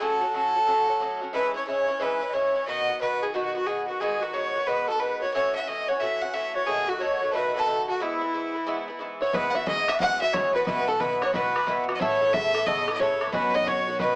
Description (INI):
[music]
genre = celtic folk, Celtic hornpipe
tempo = 180 BPM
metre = 4/4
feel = swing 64% on 8ths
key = E major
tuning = A4 = 438 Hz
[part]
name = clear fiddle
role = melody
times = 0.0-14.2 s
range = E4 to F#5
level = -25 LUFS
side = equal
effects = none
[part]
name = bright baroque flute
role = second line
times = 0.0-14.2 s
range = E4 to F#5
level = -30 LUFS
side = left 1 dB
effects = none
[part]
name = Irish bouzouki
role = accompaniment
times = 0.0-14.2 s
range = G#2 to A4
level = -29 LUFS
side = right 1 dB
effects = none
[part]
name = open-back banjo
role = second line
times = 9.2-14.2 s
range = A4 to F#5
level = -31 LUFS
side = equal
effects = none
[part]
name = upright bass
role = bass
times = 9.3-14.2 s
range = A1 to E2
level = -42 LUFS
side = equal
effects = none
[part]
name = bodhran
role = percussion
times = 9.3-14.2 s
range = none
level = -34 LUFS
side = equal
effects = none
[sound]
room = moderate studio reverb, RT60 0.5 s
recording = small speaker sound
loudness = -23 LUFS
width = side -26 dB against mid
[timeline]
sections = 0.0-9.3 A section; 9.3-14.2 B section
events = none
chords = 0.0 F#m; 1.3 C#m; 2.7 B; 4.0 G#m7; 5.3 F#m7; 6.7 B7; 8.0 E; 9.3 Eadd9; 10.7 Bsus4; 12.0 Aadd9; 13.3 Badd9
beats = | 0.00 0.34 0.67 1.00 | 1.34 1.67 2.00 2.34 | 2.67 3.00 3.34 3.67 | 4.01 4.34 4.67 5.01 | 5.34 5.67 6.01 6.34 | 6.67 7.01 7.34 7.67 | 8.01 8.34 8.68 9.01 | 9.34 9.67 10.01 10.34 | 10.67 11.00 11.34 11.67 | 12.00 12.34 12.67 13.00 | 13.33 13.66 14.00